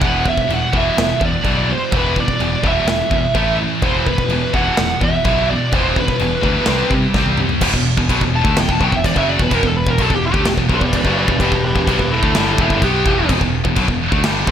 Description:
heavy metal; 127 BPM; 4/4; straight; E minor; A4 = 440 Hz
high-gain lead guitar; melody; 0.0-14.5 s; E4 to A5; -20 LUFS; right 1 dB; distortion
heavy high-gain guitar; riff; 0.0-14.5 s; E2 to C4; -21 LUFS; left 11 dB; distortion
heavy high-gain guitar; riff; 0.0-14.5 s; E2 to C4; -22 LUFS; right 10 dB; distortion
high-gain distorted guitar; riff; 0.0-7.6 s; A2 to G4; -26 LUFS; left 1 dB; distortion
growling picked electric bass; bass; 0.0-14.5 s; E1 to C3; -21 LUFS; equal; overdrive
big rock drum kit; drums; 0.0-14.5 s; china cymbal, crash cymbal, kick drum, snare drum, toms; -20 LUFS; left 1 dB
small room ambience; -14 LUFS; side -9 dB against mid
0.0-7.6 A section; 7.6-14.5 B section
drum fill 7.2-7.6; lead electric guitar solo 7.6-14.5
0.0 Em; 3.4 A5; 3.8 Em; 6.7 C5; 7.6 Em

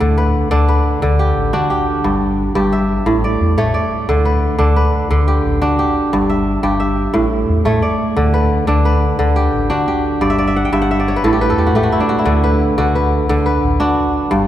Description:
west african traditional; 118 BPM (dotted quarters); 12/8; straight; D major; A4 = 440 Hz
kora; arpeggios; 0.0-14.5 s; G2 to G5; -14 LUFS; equal
fingered electric bass; bass; 0.0-14.5 s; G1 to D3; -17 LUFS; equal
wet church reverb, RT60 3.5 s; recorded in a church or concert hall; -13 LUFS; side -12 dB against mid
0.0-12.3 A section; 12.3-14.5 B section
kora fill 10.2-12.3
0.0 D; 2.0 Em/G; 3.1 A; 4.1 D; 6.1 Em/G; 7.1 A; 8.2 D; 10.2 G5; 11.2 A5; 12.3 D

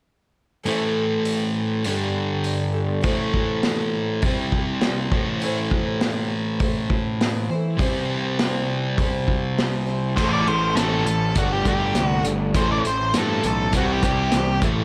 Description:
classic rock; 101 BPM; 4/4; straight; A minor; A4 = 440 Hz
picked twelve-string acoustic guitar; accompaniment; 0.6-14.8 s; A2 to C5; -32 LUFS; equal
sludgy distorted guitar; riff; 0.7-14.8 s; G2 to C4; -26 LUFS; equal; overdrive
vintage drum kit; drums; 0.7-14.8 s; crash cymbal, hi-hat, kick drum, snare drum; -27 LUFS; equal
octave-fuzz lead guitar; melody; 10.2-14.6 s; F#4 to D5; -26 LUFS; equal; distortion
overdriven semi-hollow guitar; riff; 10.2-14.8 s; A2 to D4; -32 LUFS; equal
fuzz picked electric bass; bass; 10.2-14.8 s; G1 to G2; -28 LUFS; equal; overdrive
light reverb, small room ambience; -22 LUFS; mono
0.7-10.2 A section; 10.2-14.8 B section
0.7 Am; 1.9 Gsus2; 3.1 Am; 4.2 C; 5.1 Am; 7.8 C; 10.2 Am; 11.4 Gsus2; 12.6 Am; 13.7 C

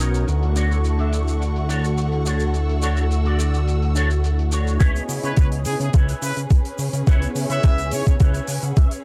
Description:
nu-disco, nu disco; 106 BPM; 4/4; straight; A4 = 440 Hz
warm analog pad; accompaniment; 0.0-8.1 s; A3 to C#6; -31 LUFS; equal; ensemble chorus, sidechain pumping, delay
warm studio string section; sustained chords; 0.0-9.0 s; B3 to E6; -34 LUFS; equal; sidechain pumping
electric guitar with an envelope filter; riff; 0.0-9.0 s; D4 to G#5; -33 LUFS; equal; ensemble chorus, low-pass filter, delay
fat analog bass; bass; 0.0-8.9 s; B1 to C#3; -24 LUFS; equal
hi-hat and shaker; drums; 0.0-9.0 s; -37 LUFS; equal; low-pass filter on hats, low-pass filter on perc, low-pass filter on room
maracas; percussion; 0.0-4.8 s; -37 LUFS; equal
electronic kick drum; drums; 4.8-8.9 s; -17 LUFS; equal; overdrive
bright trumpet section; melody; 5.2-8.2 s; G#4 to E5; -32 LUFS; equal; dub echo
small room ambience; -20 LUFS; mono
0.0-4.8 A section; 4.8-9.0 B section
build-up 4.8-9.0; filter sweep on clean electric guitar 4.8-9.0; clean electric guitar fill 8.2-9.0
0.3 Dmaj7; 4.8 C#m7

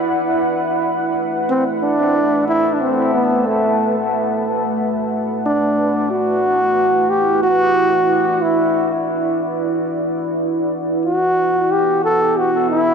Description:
ambient; 91 BPM; 4/4; straight; A4 = 440 Hz
deep dark ambient pad; sustained chords; 0.0-12.9 s; A3 to A5; -19 LUFS; right 1 dB; chorus, built-in reverb
warm trombone; melody; 1.5-12.9 s; A3 to A4; -17 LUFS; equal; dub echo
moderate echo chamber reverb, RT60 1.3 s, small room ambience; echo-heavy mix; -15 LUFS; side -6 dB against mid
0.0-5.8 A section; 5.8-12.9 B section
0.0 B7sus4

